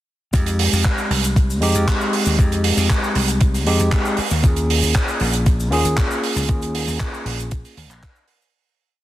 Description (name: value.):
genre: nu-disco, nu disco.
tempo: 117 BPM.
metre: 4/4.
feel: straight.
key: F minor.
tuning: A4 = 439 Hz.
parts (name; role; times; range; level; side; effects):
tine electric piano; accompaniment; 0.3-7.7 s; Ab3 to Ab4; -23 LUFS; equal; sidechain pumping, slapback echo.
vintage slap bass; bass; 0.3-8.0 s; Bb1 to F2; -20 LUFS; equal; none.
damped 70s drum kit; drums; 0.3-8.5 s; cabasa, handclaps, hi-hat; -22 LUFS; right 2 dB; none.
electronic kick drum; drums; 0.3-8.1 s; none; -18 LUFS; equal; overdrive.
room: light reverb, small room ambience.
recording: dense, heavily limited modern master.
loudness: -16 LUFS.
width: side -14 dB against mid.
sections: 0.3-8.5 drop.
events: drop 0.3-8.5; fade-out 5.8-8.5.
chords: 0.3 Fm9; 4.2 Eb9sus4.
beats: | 0.34 0.85 1.36 1.88 | 2.39 2.90 3.41 3.93 | 4.44 4.95 5.46 5.98 | 6.49 7.00 7.52 8.03.